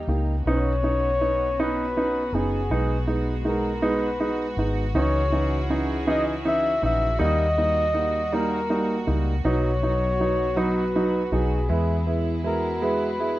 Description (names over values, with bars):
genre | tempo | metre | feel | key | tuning
six-eight pop ballad | 53 BPM (dotted quarters) | 6/8 | straight | unclear | A4 = 440 Hz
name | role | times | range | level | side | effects
mellow flugelhorn | melody | 0.0-13.4 s | G#4 to E5 | -26 LUFS | left 2 dB | none
warm studio string section | sustained chords | 0.0-13.4 s | C#3 to G#4 | -33 LUFS | right 1 dB | none
vintage muted fingered electric bass | bass | 0.0-13.4 s | F#1 to E2 | -26 LUFS | equal | none
dark grand piano | accompaniment | 0.1-13.4 s | E3 to G4 | -26 LUFS | right 2 dB | none
warm French horn section | second line | 9.4-13.4 s | E4 to F#4 | -31 LUFS | equal | none
room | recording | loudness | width
light reverb, small room ambience | rough home demo mix | -21 LUFS | side -16 dB against mid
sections
0.5-13.4 A section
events
none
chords
0.5 Badd9; 2.7 G#m/B; 4.9 C#madd9; 7.2 D#; 9.4 B; 11.7 E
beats
| 0.45 1.57 | 2.70 3.82 | 4.95 6.07 | 7.20 8.32 | 9.45 10.57 | 11.70 12.82